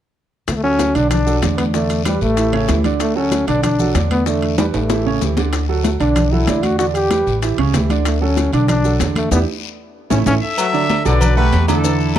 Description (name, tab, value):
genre	latin, salsa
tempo	190 BPM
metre	4/4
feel	straight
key	D major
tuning	A4 = 442 Hz
part	warm trombone	melody	0.5-10.3 s	G3 to G4	-19 LUFS	left 2 dB	none
part	upright bass	bass	0.5-12.2 s	A1 to E2	-19 LUFS	left 1 dB	none
part	bongos and cowbell	percussion	0.5-12.2 s	none	-27 LUFS	left 12 dB	none
part	congas	percussion	0.5-12.2 s	none	-24 LUFS	left 1 dB	none
part	guiro	percussion	0.5-12.2 s	none	-34 LUFS	left 18 dB	none
part	maracas	percussion	0.5-12.2 s	none	-32 LUFS	left 17 dB	none
part	timbales and agogo bells	percussion	0.5-12.2 s	none	-26 LUFS	right 4 dB	none
part	clear baby grand piano	accompaniment	0.6-12.2 s	C#3 to F#5	-21 LUFS	right 10 dB	none
part	warm trumpet section	melody	10.4-12.2 s	E4 to E5	-20 LUFS	left 3 dB	none
part	clear trombone section	second line	10.6-12.0 s	D3 to F#3	-24 LUFS	left 5 dB	none
room	studio reverb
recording	dry, close 1970s-style studio recording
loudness	-14 LUFS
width	side -11 dB against mid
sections	0.5-10.6 A section; 10.6-12.2 B section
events	drum fill 4.6-5.5, 9.8-10.6; band accent 9.3-10.6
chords	0.5 D; 1.1 Bm7; 1.7 Em7; 2.4 A7; 3.0 D; 3.6 Bm7; 4.3 Em7; 4.9 A7; 5.5 D; 6.2 Bm7; 6.8 Em7; 7.4 A7; 8.1 D; 8.7 Bm7; 9.3 Em7; 9.9 A; 10.6 D; 11.2 Bm7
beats	| 0.48 0.80 1.11 1.43 | 1.74 2.06 2.37 2.69 | 3.00 3.32 3.64 3.95 | 4.27 4.58 4.90 5.21 | 5.53 5.85 6.16 6.48 | 6.79 7.11 7.42 7.74 | 8.06 8.37 8.69 9.00 | 9.32 9.63 9.95 10.27 | 10.58 10.90 11.21 11.53 | 11.84 12.16